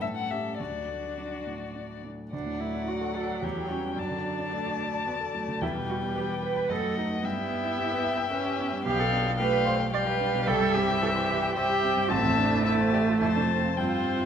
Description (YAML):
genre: quick classical-period movement for piano quintet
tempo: 110 BPM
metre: 3/4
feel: rubato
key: D major, C major from 8.9 s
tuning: A4 = 441 Hz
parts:
  - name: muted violin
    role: melody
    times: 0.0-14.3 s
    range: D5 to A5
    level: -32 LUFS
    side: left 9 dB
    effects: none
  - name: muted cello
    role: second line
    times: 0.0-14.3 s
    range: F#3 to D5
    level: -31 LUFS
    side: right 6 dB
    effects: none
  - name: muted violin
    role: second line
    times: 0.0-14.3 s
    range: F#4 to F5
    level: -34 LUFS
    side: left 5 dB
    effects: none
  - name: muted viola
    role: accompaniment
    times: 0.0-14.3 s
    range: E3 to D4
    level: -32 LUFS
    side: right 3 dB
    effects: none
  - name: warm concert grand piano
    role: accompaniment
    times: 0.0-14.3 s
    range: A1 to B5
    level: -31 LUFS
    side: equal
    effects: none
room: wet recital hall reverb, RT60 1.7 s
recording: none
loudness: -25 LUFS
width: side -8 dB against mid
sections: 0.0-2.3 A section; 2.3-14.3 B section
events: none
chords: 0.0 A7; 0.6 D; 3.4 C#dim/E; 4.0 D/F#; 5.6 Em; 6.7 D#dim/F#; 7.2 Em/G; 8.9 G7/B; 10.5 C; 12.1 Am; 13.2 F